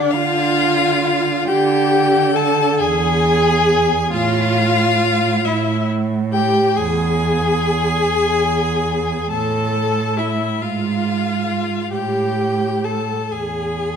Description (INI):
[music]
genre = classical, slow romantic movement for string quartet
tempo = 46 BPM (dotted quarters)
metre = 6/8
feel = uneven beats, rubato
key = unclear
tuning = A4 = 439 Hz
[part]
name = rich violin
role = melody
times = 0.0-14.0 s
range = D5 to A5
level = -22 LUFS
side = left 8 dB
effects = none
[part]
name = rich violin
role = second line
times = 0.0-14.0 s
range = D4 to A4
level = -23 LUFS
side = left 3 dB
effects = none
[part]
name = clear viola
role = accompaniment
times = 0.0-14.0 s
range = D4 to A4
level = -21 LUFS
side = right 1 dB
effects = none
[part]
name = warm cello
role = bass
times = 0.1-14.0 s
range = E2 to D3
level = -20 LUFS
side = right 5 dB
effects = none
[sound]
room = moderate scoring stage reverb, RT60 1.6 s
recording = none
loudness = -15 LUFS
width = side -7 dB against mid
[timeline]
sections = 0.0-14.0 A section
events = none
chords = 0.0 Dm; 2.8 E; 4.1 Fmaj9/A; 6.8 E; 9.3 A5; 10.6 Fm/Ab; 11.9 Gsus2/A; 13.3 E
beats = 0.13 | 1.48 2.79 | 4.12 5.45 | 6.76 8.02 | 9.31 10.61 | 11.92 13.31